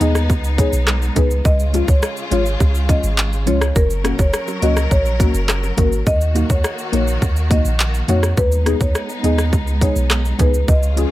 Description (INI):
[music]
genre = dancehall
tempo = 104 BPM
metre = 4/4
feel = straight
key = unclear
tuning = A4 = 440 Hz
[part]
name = marimba with soft mallets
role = melody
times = 0.0-10.9 s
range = Bb4 to Eb5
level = -24 LUFS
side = equal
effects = none
[part]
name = deep mellow chord stab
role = accompaniment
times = 0.0-11.1 s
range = Ab3 to Ab4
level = -22 LUFS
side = left 3 dB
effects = chorus, sidechain pumping
[part]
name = warm symphonic string section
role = sustained chords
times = 0.0-11.1 s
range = Db3 to Bb4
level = -27 LUFS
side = equal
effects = sidechain pumping
[part]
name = punchy sub bass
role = bass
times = 0.0-11.1 s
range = Gb1 to F2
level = -18 LUFS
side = equal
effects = none
[part]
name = island pop drum kit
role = drums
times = 0.0-11.1 s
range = handclaps, hi-hat, kick drum, rim click, shaker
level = -18 LUFS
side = equal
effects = overdrive
[part]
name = bongos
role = percussion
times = 0.0-11.1 s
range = none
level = -29 LUFS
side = right 5 dB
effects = none
[sound]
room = little or no reverb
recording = none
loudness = -14 LUFS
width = side -15 dB against mid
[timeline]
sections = 0.0-11.1 A section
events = none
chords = 0.0 Abm; 1.5 Db; 3.8 Gb; 6.1 Ebm; 8.4 Abm/Eb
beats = 0.30 0.87 | 1.45 2.03 2.60 3.18 | 3.76 4.34 4.91 5.49 | 6.07 6.64 7.22 7.80 | 8.37 8.95 9.53 10.11 | 10.68